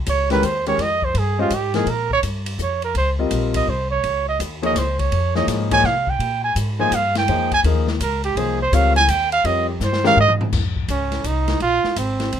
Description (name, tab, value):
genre	modal jazz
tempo	166 BPM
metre	3/4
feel	swing 65% on 8ths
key	Bb dorian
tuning	A4 = 440 Hz
part	upright bass	bass	0.0-12.4 s	Ab1 to C3	-22 LUFS	left 1 dB	none
part	breathy trumpet	melody	0.1-12.4 s	C4 to Ab5	-19 LUFS	right 4 dB	none
part	open jazz drum kit	drums	0.1-12.4 s	crash cymbal, hi-hat, kick drum, ride cymbal, snare drum, toms	-27 LUFS	left 3 dB	none
part	warm concert grand piano	accompaniment	0.3-10.2 s	Eb3 to Eb5	-23 LUFS	left 5 dB	none
room	little or no reverb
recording	minimal, uncompressed stereo recording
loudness	-17 LUFS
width	side -9 dB against mid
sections	0.0-10.5 A section; 10.5-12.4 B section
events	trumpet solo 0.0-10.5; drum fill 9.8-10.5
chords	0.0 Bbm11; 6.2 Fm; 10.5 Bbm9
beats	0.07 0.43 | 0.79 1.15 1.51 | 1.87 2.23 2.59 | 2.95 3.31 3.67 | 4.04 4.40 4.76 | 5.12 5.48 5.84 | 6.20 6.56 6.92 | 7.28 7.64 8.01 | 8.37 8.73 9.09 | 9.45 9.81 10.17 | 10.53 10.89 11.25 | 11.61 11.97 12.33